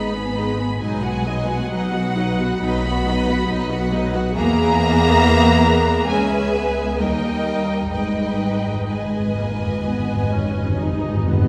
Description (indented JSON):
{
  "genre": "classical, slow romantic movement for symphony orchestra",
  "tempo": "62-70 BPM",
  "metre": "4/4",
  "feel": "rubato",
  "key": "G# minor",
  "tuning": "A4 = 441 Hz",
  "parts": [
    { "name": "rich studio violin section", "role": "melody", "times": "0.0-11.3 s", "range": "F#5 to B5", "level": "-28 LUFS", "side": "equal", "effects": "none" },
    { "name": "rich symphonic violin section", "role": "second line", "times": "0.0-11.5 s", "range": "F#4 to F#5", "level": "-29 LUFS", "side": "equal", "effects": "none" },
    { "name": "warm symphonic viola section", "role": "accompaniment", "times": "0.0-11.5 s", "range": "F#3 to G#4", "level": "-26 LUFS", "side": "equal", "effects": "none" },
    { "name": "rich symphonic cello section", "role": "bass", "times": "0.0-11.3 s", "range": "F#3 to B3", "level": "-26 LUFS", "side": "equal", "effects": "none" },
    { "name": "rich symphonic double bass section", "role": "bass", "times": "0.0-11.5 s", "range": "G#1 to E2", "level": "-26 LUFS", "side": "equal", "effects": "none" },
    { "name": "timpani", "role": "percussion", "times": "7.9-11.5 s", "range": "G#2", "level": "-25 LUFS", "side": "equal", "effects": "none" }
  ],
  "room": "wet scoring stage reverb, RT60 1.7 s",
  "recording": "heard from further back in the room",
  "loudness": "-20 LUFS",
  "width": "mono",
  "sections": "0.0-11.5 A section",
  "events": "timpani fill 7.9-11.5",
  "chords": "0.0 G#m; 0.8 B; 4.4 E; 6.1 C#m7; 7.0 D#; 7.9 G#m"
}